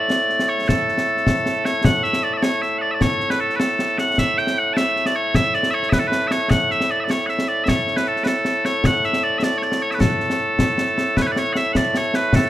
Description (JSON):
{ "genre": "scottish traditional, Scottish pipe music", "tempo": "103 BPM (dotted quarters)", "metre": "6/8", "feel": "straight", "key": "A major", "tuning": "A4 = 440 Hz", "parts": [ { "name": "loud bright bagpipes", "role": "melody", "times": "0.0-12.5 s", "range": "A2 to A5", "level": "-19 LUFS", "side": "equal", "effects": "none" }, { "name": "concert snare drum and concert bass drum", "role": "drums", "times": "0.1-12.4 s", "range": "none", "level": "-21 LUFS", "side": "left 1 dB", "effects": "none" } ], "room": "light reverb", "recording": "minimal, uncompressed stereo recording", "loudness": "-17 LUFS", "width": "side -14 dB against mid", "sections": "0.0-1.8 A section; 1.8-11.2 A section; 11.2-12.5 B section", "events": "none", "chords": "none" }